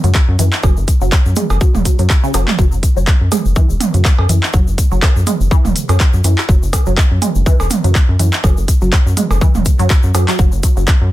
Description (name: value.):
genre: minimal techno.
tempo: 123 BPM.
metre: 4/4.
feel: swing 56% on 16ths.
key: unclear.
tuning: A4 = 439 Hz.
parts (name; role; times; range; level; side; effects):
resonant blip pluck; riff; 0.0-10.8 s; C#3 to G#3; -22 LUFS; equal; phaser, sidechain pumping, digital delay.
rubbery square bass; bass; 0.0-11.1 s; E1 to F#2; -14 LUFS; equal; sidechain pumping.
minimal click drum kit; drums; 0.0-11.0 s; handclaps, hi-hat; -20 LUFS; equal; soft clipping on snare.
tube shaker; percussion; 0.0-11.0 s; none; -29 LUFS; left 6 dB; none.
electronic kick drum; drums; 0.1-11.0 s; none; -12 LUFS; equal; none.
electronic cowbell, percussion blips and toms; percussion; 0.6-10.3 s; none; -20 LUFS; right 4 dB; none.
room: little or no reverb.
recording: dense, heavily limited modern master.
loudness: -11 LUFS.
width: side -15 dB against mid.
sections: 0.0-11.1 A section.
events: none.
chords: 0.0 F#5.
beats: 0.15 | 0.63 1.12 1.61 2.10 | 2.58 3.07 3.56 4.05 | 4.54 5.02 5.51 6.00 | 6.49 6.98 7.46 7.95 | 8.44 8.93 9.41 9.90 | 10.39 10.88.